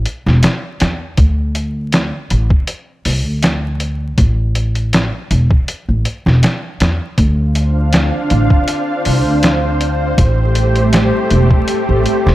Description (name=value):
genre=trip hop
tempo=80 BPM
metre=4/4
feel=swing 54% on 16ths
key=D minor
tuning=A4 = 439 Hz
part: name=upright bass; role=bass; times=0.0-12.3 s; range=E1 to E2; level=-14 LUFS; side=equal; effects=none
part: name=trip hop sampler-style drum kit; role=drums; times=0.1-12.3 s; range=hi-hat, kick drum, snare drum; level=-15 LUFS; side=equal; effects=vintage 12-bit sampler grit
part: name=string machine, cellos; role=sustained chords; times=7.5-12.3 s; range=A3 to F5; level=-16 LUFS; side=equal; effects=ensemble chorus
room=light reverb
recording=vinyl crackle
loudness=-12 LUFS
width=side -15 dB against mid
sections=0.0-12.3 A section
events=none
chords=0.0 N.C.; 1.2 D5; 4.2 A5; 7.2 Dm7; 10.2 Am7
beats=0.43 | 1.18 1.93 2.68 3.43 | 4.18 4.93 5.68 6.43 | 7.18 7.93 8.68 9.43 | 10.18 10.93 11.68